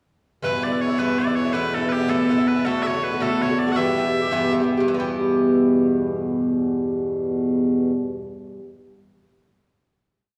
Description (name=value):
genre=celtic folk, Celtic jig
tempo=108 BPM (dotted quarters)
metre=6/8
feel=straight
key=E minor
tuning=A4 = 443 Hz
part: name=loud bright bagpipes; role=melody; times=0.4-4.5 s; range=G4 to F#5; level=-28 LUFS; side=equal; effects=none
part: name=Irish bouzouki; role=accompaniment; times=0.4-8.7 s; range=G2 to G4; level=-25 LUFS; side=equal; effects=none
part: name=hand-pumped harmonium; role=drone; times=0.4-7.9 s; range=E2 to B2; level=-25 LUFS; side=equal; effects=none
room=wet recital hall reverb, RT60 1.7 s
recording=heard from further back in the room, small room ambience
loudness=-21 LUFS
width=mono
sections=0.4-4.9 A section; 4.9-7.1 final chord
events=none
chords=0.4 Em; 1.5 Asus2; 2.6 D; 3.8 Em